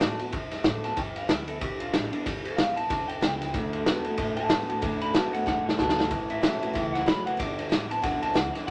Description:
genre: rockabilly.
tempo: 187 BPM.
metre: 4/4.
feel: swing 59% on 8ths.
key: D major.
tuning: A4 = 440 Hz.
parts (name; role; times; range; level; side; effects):
electric guitar through a small old amp; melody; 0.0-8.7 s; D4 to B5; -33 LUFS; equal; none.
picked steel-string acoustic guitar; accompaniment; 0.0-8.7 s; A2 to F#4; -37 LUFS; equal; none.
upright bass; bass; 0.0-8.7 s; F#1 to A2; -43 LUFS; equal; none.
vintage drum kit; drums; 0.0-8.7 s; kick drum, ride cymbal, snare drum; -30 LUFS; equal; none.
electric guitar through a small old amp; riff; 3.5-8.7 s; G2 to B3; -35 LUFS; equal; none.
room: moderate small room ambience, RT60 0.5 s.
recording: none.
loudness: -27 LUFS.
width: mono.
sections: 0.0-8.7 A section.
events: clean electric guitar solo 0.0-8.7; drum fill 5.5-6.1.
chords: 0.0 D6; 1.0 G6; 3.5 D6; 6.1 A6; 7.4 G6.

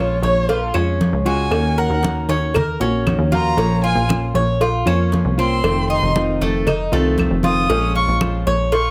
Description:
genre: latin, Cuban son and guajira.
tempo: 117 BPM.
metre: 4/4.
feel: straight.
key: Bb minor.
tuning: A4 = 440 Hz.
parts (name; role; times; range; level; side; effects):
dark violin; melody; 0.0-8.9 s; Db5 to Eb6; -24 LUFS; equal; none.
nylon-string guitar; accompaniment; 0.0-8.8 s; C3 to Gb4; -25 LUFS; equal; none.
Cuban tres; arpeggios; 0.0-8.9 s; A3 to Db5; -25 LUFS; equal; none.
plucky analog bass; bass; 0.0-8.9 s; F1 to F2; -23 LUFS; equal; none.
cowbell; percussion; 0.2-8.9 s; none; -27 LUFS; equal; none.
congas; percussion; 0.5-8.9 s; none; -25 LUFS; equal; none.
claves; percussion; 0.7-8.5 s; none; -33 LUFS; equal; none.
room: light reverb.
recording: close, detailed microphones.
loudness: -18 LUFS.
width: mono.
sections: 0.0-8.9 A section.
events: violin solo 0.0-8.9.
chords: 0.0 Bbm7; 1.5 Ebm7; 3.6 Bbm; 5.6 F7; 7.7 Bbm7.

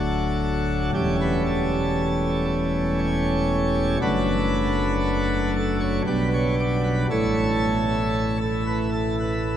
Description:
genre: classical, chorale-style piece for pipe organ.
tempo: 58 BPM.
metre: 3/4.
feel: straight.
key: unclear.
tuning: A4 = 440 Hz.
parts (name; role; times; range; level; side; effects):
pipe organ, plenum; solo; 0.0-9.6 s; D1 to D5; -20 LUFS; equal; none.
room: wet cathedral reverb, RT60 5.9 s.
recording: dark, warm production.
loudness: -20 LUFS.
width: side -10 dB against mid.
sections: 0.0-9.6 A section.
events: none.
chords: 0.0 D; 0.9 A7/E; 4.0 D/F#; 6.1 G/B; 7.1 A.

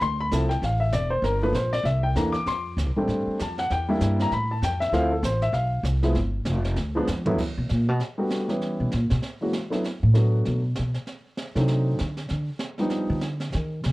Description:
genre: jazz piano trio.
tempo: 195 BPM.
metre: 4/4.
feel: swing 61% on 8ths.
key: G major from 7.4 s.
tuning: A4 = 441 Hz.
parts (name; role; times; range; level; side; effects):
warm grand piano; melody; 0.0-13.2 s; G2 to D6; -25 LUFS; equal; none.
upright bass; bass; 0.0-13.9 s; E1 to Eb3; -24 LUFS; equal; none.
jazz brush drum kit; drums; 0.0-13.9 s; brushed snare drum, crash cymbal, hi-hat, kick drum, snare drum, toms; -35 LUFS; right 2 dB; none.
room: light reverb.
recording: worn, warbling old tape, cassette tape, warbly pitch drift.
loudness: -22 LUFS.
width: side -19 dB against mid.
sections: 0.0-7.4 A section; 7.4-13.9 A section.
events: grand piano solo 0.0-7.4; drum fill 6.8-7.4; upright bass solo 7.4-13.9.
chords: 0.0 Dm9; 1.2 Gm; 1.9 C13; 2.5 F69; 3.7 Em7b5; 4.3 Fadd9(#11); 4.9 Dm9; 6.2 G7(no3); 7.4 Gmaj7; 9.2 F#7(no3); 9.8 Bm7; 11.1 D7b9; 12.3 G7b13.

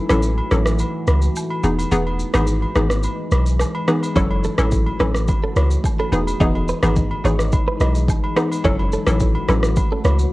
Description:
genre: afrobeats.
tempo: 107 BPM.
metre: 4/4.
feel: straight.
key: F# dorian.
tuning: A4 = 440 Hz.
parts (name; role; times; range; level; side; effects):
hollow square pluck; accompaniment; 0.0-9.7 s; E3 to A4; -22 LUFS; left 1 dB; chorus.
deep dark ambient pad; sustained chords; 0.0-10.3 s; E3 to F#4; -28 LUFS; left 1 dB; chorus, built-in reverb.
warm 808-style bass; bass; 0.1-10.3 s; E1 to C#2; -19 LUFS; equal; none.
afro-pop drum kit; drums; 0.1-10.3 s; kick drum, rim click, shaker; -22 LUFS; equal; overdrive.
agogo bells and woodblock; percussion; 0.1-10.2 s; none; -31 LUFS; right 1 dB; none.
direct-recorded clean electric guitar; riff; 4.2-10.1 s; C#4 to D#5; -26 LUFS; right 3 dB; spring reverb, tape echo.
room: digital ambience.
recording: worn, warbling old tape, cassette tape, warbly pitch drift.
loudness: -16 LUFS.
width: side -19 dB against mid.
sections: 0.0-10.3 A section.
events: break 0.0-4.2.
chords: 0.0 F#m7; 1.6 Emaj7; 4.2 F#m7; 6.1 Emaj7; 8.6 F#m7.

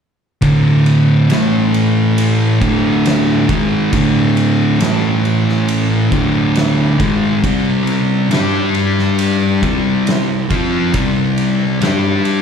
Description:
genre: stoner and doom metal.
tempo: 68 BPM.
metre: 4/4.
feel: straight.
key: D minor.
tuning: A4 = 439 Hz.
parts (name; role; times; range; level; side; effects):
thick fuzz guitar; riff; 0.4-12.4 s; D2 to G4; -15 LUFS; left 6 dB; distortion.
thick fuzz guitar; riff; 0.4-12.4 s; D2 to G4; -16 LUFS; right 8 dB; distortion.
oversized low-tuned drum kit; drums; 0.4-12.4 s; kick drum, ride cymbal, snare drum; -21 LUFS; equal; none.
room: little or no reverb.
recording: live gig heard through the venue's PA, club ambience.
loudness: -12 LUFS.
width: side -7 dB against mid.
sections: 0.4-12.4 A section.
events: none.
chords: 0.4 D5; 1.3 A5; 2.6 D5; 4.8 A5; 6.1 D5; 7.4 C5; 8.3 G5; 9.6 C5; 11.8 G5.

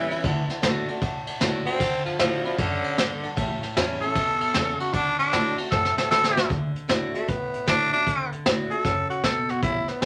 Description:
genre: rockabilly.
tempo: 153 BPM.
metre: 4/4.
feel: swing 65% on 8ths.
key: D major.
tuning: A4 = 440 Hz.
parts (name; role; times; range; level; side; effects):
growling tenor saxophone; melody; 0.0-10.1 s; D3 to A4; -26 LUFS; equal; none.
picked steel-string acoustic guitar; accompaniment; 0.0-10.1 s; E2 to F#4; -34 LUFS; equal; none.
upright bass; bass; 0.0-10.1 s; G#1 to B2; -35 LUFS; equal; none.
vintage brush drum kit; drums; 0.1-10.1 s; hi-hat, kick drum, ride cymbal, snare drum; -29 LUFS; equal; none.
dark upright piano; accompaniment; 0.2-6.5 s; C#5 to B5; -39 LUFS; equal; none.
room: wet studio ambience, RT60 0.5 s.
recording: none.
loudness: -24 LUFS.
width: mono.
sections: 0.0-6.5 A section; 6.5-10.1 B section.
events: tenor saxophone solo 0.0-6.5; drum fill 5.7-6.5.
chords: 0.2 D; 3.4 A7; 4.9 D.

